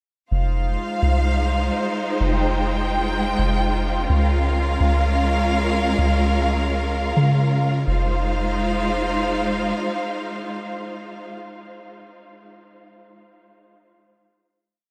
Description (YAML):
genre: hip hop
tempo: 127 BPM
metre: 4/4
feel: half-time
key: F minor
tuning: A4 = 440 Hz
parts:
  - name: warm studio string section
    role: sustained chords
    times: 0.3-11.3 s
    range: Ab3 to G5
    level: -25 LUFS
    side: equal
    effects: none
  - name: soft 808-style bass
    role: bass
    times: 0.3-9.7 s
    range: F1 to Db3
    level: -23 LUFS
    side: equal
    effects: none
room: moderate huge ambient reverb, RT60 7.8 s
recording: dreamy mix soaked in reverb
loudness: -21 LUFS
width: mono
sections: 0.3-7.9 verse; 7.9-11.7 final chord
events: none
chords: 0.3 Fm7; 4.1 Db6; 7.9 Fm7